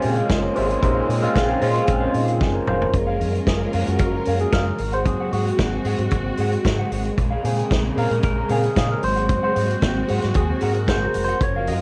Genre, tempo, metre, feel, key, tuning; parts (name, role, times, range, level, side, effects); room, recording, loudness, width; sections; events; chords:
disco; 113 BPM; 4/4; straight; A4 = 439 Hz
mellow electric guitar; accompaniment; 0.0-11.8 s; Gb4 to Ab5; -31 LUFS; equal; cassette tape
overdriven tine electric piano; accompaniment; 0.0-11.8 s; Db3 to Eb5; -25 LUFS; equal; phaser, cassette tape, plate reverb
clear studio string section; sustained chords; 0.0-11.8 s; Db3 to Bb4; -31 LUFS; equal; cassette tape, plate reverb
fingered electric bass; bass; 0.0-11.8 s; F1 to Bb2; -27 LUFS; equal
vintage drum kit; drums; 0.0-11.8 s; hi-hat, kick drum, snare drum, toms; -26 LUFS; equal; cassette tape
light reverb; home recording on cassette, lossy compression artefacts; -21 LUFS; mono
0.0-2.9 A section; 2.9-11.8 B section
drum fill 2.4-2.9; tine electric piano solo 2.9-11.8
0.0 Bbm7; 2.9 Gbmaj7; 4.8 Ab7; 7.2 Bbm7; 9.0 Ab7